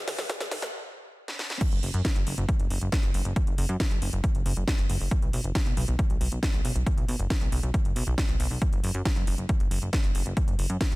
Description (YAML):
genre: uplifting trance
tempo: 137 BPM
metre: 4/4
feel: straight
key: unclear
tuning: A4 = 442 Hz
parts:
  - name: plucky analog bass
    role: bass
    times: 0.0-11.0 s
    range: D#1 to F#2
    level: -28 LUFS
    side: equal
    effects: sidechain pumping
  - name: house drum kit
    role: drums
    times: 0.1-11.0 s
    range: crash cymbal, hi-hat, snare drum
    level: -33 LUFS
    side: equal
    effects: overdrive
  - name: electronic kick drum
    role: drums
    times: 0.3-10.9 s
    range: none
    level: -26 LUFS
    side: equal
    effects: overdrive, high-pass filter on kick, high-pass filter on room
room: little or no reverb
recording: dense, heavily limited modern master, high-pass filter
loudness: -24 LUFS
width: side -21 dB against mid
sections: 0.0-1.6 A section; 1.6-11.0 B section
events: build-up 0.0-1.6; drum fill 0.0-0.7, 1.3-1.6; filter sweep 0.0-1.6; stop 0.7-1.6; drop 1.6-11.0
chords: none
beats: 0.30 0.73 1.17 | 1.61 2.05 2.49 2.92 | 3.36 3.80 4.24 4.68 | 5.11 5.55 5.99 6.43 | 6.87 7.30 7.74 8.18 | 8.62 9.05 9.49 9.93 | 10.37 10.81